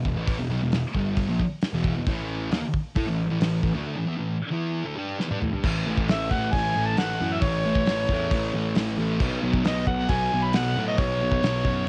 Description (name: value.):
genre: garage rock duo or trio.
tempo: 135 BPM.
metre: 4/4.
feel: straight.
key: unclear.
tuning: A4 = 441 Hz.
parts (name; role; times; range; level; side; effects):
fuzz picked electric bass; bass; 0.0-11.8 s; E1 to A2; -32 LUFS; equal; overdrive.
thick fuzz guitar; riff; 0.1-11.9 s; E2 to G4; -29 LUFS; equal; distortion, cassette tape.
cloth-damped thuddy drum kit; drums; 0.1-11.8 s; crash cymbal, hi-hat, kick drum, snare drum, toms; -29 LUFS; equal; none.
mellow harmonica; melody; 6.1-11.9 s; C#5 to B5; -29 LUFS; equal; overdrive, cassette tape.
room: studio reverb.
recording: home recording on cassette.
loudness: -25 LUFS.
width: mono.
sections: 0.0-5.6 A section; 5.6-11.9 B section.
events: break 3.9-5.6; drum fill 5.2-5.6.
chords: 0.0 E5; 2.1 A5; 5.6 A; 9.2 B5.